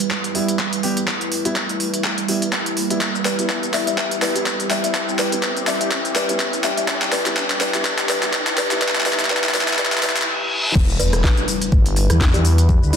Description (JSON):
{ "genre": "bass house", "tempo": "124 BPM", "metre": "4/4", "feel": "swing 56% on 16ths", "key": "E minor", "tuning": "A4 = 440 Hz", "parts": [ { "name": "sweeping resonant pad", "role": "sustained chords", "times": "0.0-13.0 s", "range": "G3 to B4", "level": "-26 LUFS", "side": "right 1 dB", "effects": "chorus, sidechain pumping" }, { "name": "garage drum kit", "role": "drums", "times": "0.0-13.0 s", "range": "crash cymbal, handclaps, hi-hat, rim click, shaker, snare drum", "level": "-20 LUFS", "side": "equal", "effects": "high-pass filter on snare, high-pass filter on hats, high-pass filter on perc, high-pass filter on cymbals, high-pass filter on room" }, { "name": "riser, reverse cymbal and impact", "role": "sound effects", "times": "0.0-12.7 s", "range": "none", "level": "-28 LUFS", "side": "equal", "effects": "none" }, { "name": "electronic kick drum", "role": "drums", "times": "0.1-12.8 s", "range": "none", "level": "-18 LUFS", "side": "equal", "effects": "high-pass filter on kick" }, { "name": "dark concert grand piano", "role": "stabs", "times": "0.3-10.2 s", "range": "G3 to G4", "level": "-28 LUFS", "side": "equal", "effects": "sidechain pumping, dub echo" }, { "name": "buzzing kalimba", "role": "melody", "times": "3.3-13.0 s", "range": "E4 to E5", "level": "-25 LUFS", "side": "left 1 dB", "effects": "vintage 12-bit sampler grit, dub echo" }, { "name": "growling FM bass", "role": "bass", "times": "10.8-12.9 s", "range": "E1 to E2", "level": "-16 LUFS", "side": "equal", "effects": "tube saturation, sidechain pumping" } ], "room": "moderate digital room reverb, RT60 1.3 s, digital ambience", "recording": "dense, heavily limited modern master, high-pass filter", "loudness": "-17 LUFS", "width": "side -7 dB against mid", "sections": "0.0-10.8 A section; 10.8-13.0 B section", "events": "build-up 0.0-10.8; drum fill 0.0-10.3; riser 0.0-10.3; reverse cymbal 9.8-10.8; drop 10.8-13.0; impact 10.8-12.7", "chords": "0.0 Em" }